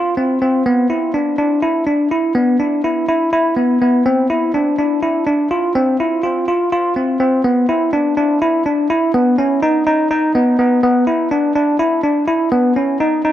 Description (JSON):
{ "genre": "progressive instrumental, progressive", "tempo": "248 BPM (eighths)", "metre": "7/8", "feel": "straight", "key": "unclear", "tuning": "A4 = 440 Hz", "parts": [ { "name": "bell-like tine electric piano", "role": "solo", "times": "0.0-13.3 s", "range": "B3 to F4", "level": "-13 LUFS", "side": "equal", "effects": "dub echo" } ], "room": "moderate spring reverb, RT60 2.2 s", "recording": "echo-heavy mix", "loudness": "-13 LUFS", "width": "side -12 dB against mid", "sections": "0.0-7.5 A section; 7.5-13.3 B section", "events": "none", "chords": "none", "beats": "0.17 0.42 | 0.66 0.90 1.15 1.39 1.63 1.88 2.12 | 2.36 2.60 2.85 3.09 3.33 3.57 3.82 | 4.06 4.30 4.54 4.79 5.03 5.27 5.51 | 5.76 6.00 6.24 6.48 6.73 6.97 7.21 | 7.45 7.69 7.94 8.18 8.42 8.66 8.90 | 9.14 9.38 9.63 9.87 10.11 10.35 10.59 | 10.83 11.07 11.32 11.56 11.80 12.04 12.28 | 12.52 12.76 13.01 13.25" }